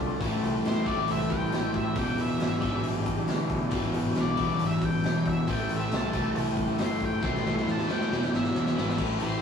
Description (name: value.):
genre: blues rock power trio and southern rock.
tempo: 137 BPM.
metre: 4/4.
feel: straight.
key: A minor.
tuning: A4 = 438 Hz.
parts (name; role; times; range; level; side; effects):
overdriven tonewheel organ; sustained chords; 0.0-9.4 s; G#3 to D5; -37 LUFS; equal; slow rotary speaker, chorus vibrato.
crunchy overdriven guitar; riff; 0.0-9.4 s; E2 to D4; -28 LUFS; equal; none.
growling picked electric bass; bass; 0.0-9.4 s; E1 to E2; -34 LUFS; left 1 dB; overdrive.
raw garage drum kit; drums; 0.2-9.3 s; crash cymbal, hi-hat, kick drum, snare drum; -31 LUFS; left 1 dB; none.
octave-fuzz lead guitar; melody; 0.7-9.4 s; C5 to C6; -34 LUFS; left 2 dB; distortion.
room: wet booth ambience, RT60 0.3 s.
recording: rough rehearsal-room recording, studio reverb.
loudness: -25 LUFS.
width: side -7 dB against mid.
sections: 0.0-9.0 A section.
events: lead electric guitar solo 0.0-9.0; drum fill 7.2-9.0.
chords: 0.2 Am7; 2.0 E7#9; 5.5 Am7; 8.1 E7#9.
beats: | 0.21 0.65 1.09 1.53 | 1.96 2.40 2.84 3.28 | 3.72 4.16 4.60 5.03 | 5.47 5.91 6.35 6.79 | 7.23 7.67 8.11 8.54 | 8.98.